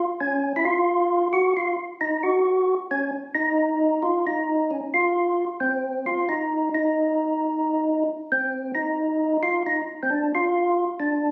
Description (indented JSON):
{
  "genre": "jazz",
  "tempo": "89 BPM",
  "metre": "4/4",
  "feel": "swing 66% on 8ths",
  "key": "unclear",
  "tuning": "A4 = 441 Hz",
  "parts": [
    { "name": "percussive tonewheel organ", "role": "solo", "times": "0.0-11.3 s", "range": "C4 to Gb4", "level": "-24 LUFS", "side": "equal", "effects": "slow rotary speaker, overdrive" }
  ],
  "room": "moderate large studio reverb, RT60 1.1 s",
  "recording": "recorded on a phone in the room, club reverb, compression",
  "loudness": "-23 LUFS",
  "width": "mono",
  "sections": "0.0-11.3 A section",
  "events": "none",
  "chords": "none"
}